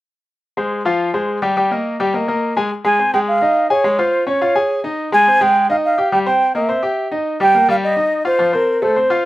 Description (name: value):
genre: latin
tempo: 211 BPM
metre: 4/4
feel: straight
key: F minor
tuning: A4 = 437 Hz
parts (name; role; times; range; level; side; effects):
- bright baby grand piano; accompaniment; 0.6-9.3 s; F3 to Ab5; -18 LUFS; left 2 dB; slapback echo
- mellow concert flute; melody; 2.9-9.3 s; Bb4 to Ab5; -14 LUFS; right 1 dB; slapback echo
room: little or no reverb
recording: recorded outdoors, with no room sound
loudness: -14 LUFS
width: side -16 dB against mid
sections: 0.4-2.7 A section; 2.7-9.3 B section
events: none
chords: 0.4 Fm; 1.6 Eb; 2.7 Fm7; 3.8 Dbmaj9/Ab; 5.0 Fm7; 6.1 C5; 6.7 C; 7.3 Eb; 8.4 F